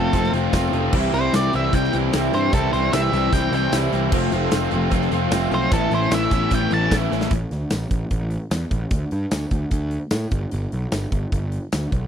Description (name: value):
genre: classic rock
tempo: 150 BPM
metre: 4/4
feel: straight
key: unclear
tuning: A4 = 443 Hz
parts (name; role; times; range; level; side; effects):
- octave-fuzz lead guitar; melody; 0.0-6.9 s; A4 to A5; -24 LUFS; right 1 dB; distortion, slapback echo
- picked steel-string acoustic guitar; accompaniment; 0.0-7.3 s; F2 to F4; -30 LUFS; right 9 dB; none
- overdriven electric guitar; riff; 0.0-7.3 s; A2 to F4; -24 LUFS; left 19 dB; none
- raw garage guitar; riff; 0.0-7.3 s; A2 to F4; -26 LUFS; right 18 dB; overdrive
- fuzz picked electric bass; bass; 0.0-12.1 s; F1 to A2; -23 LUFS; equal; overdrive
- big rock drum kit; drums; 0.1-12.0 s; crash cymbal, hi-hat, kick drum, snare drum, tambourine; -24 LUFS; equal; none
- tonewheel organ; sustained chords; 0.6-7.3 s; G3 to D5; -33 LUFS; equal; none
room: little or no reverb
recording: dry, close 1970s-style studio recording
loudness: -18 LUFS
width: side -8 dB against mid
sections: 0.0-7.3 A section; 7.3-12.1 B section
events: lead electric guitar solo 0.0-7.3; drum fill 7.1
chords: 0.0 F; 0.9 C; 4.1 F; 5.7 Aadd9; 7.3 A5; 8.9 D5; 10.3 G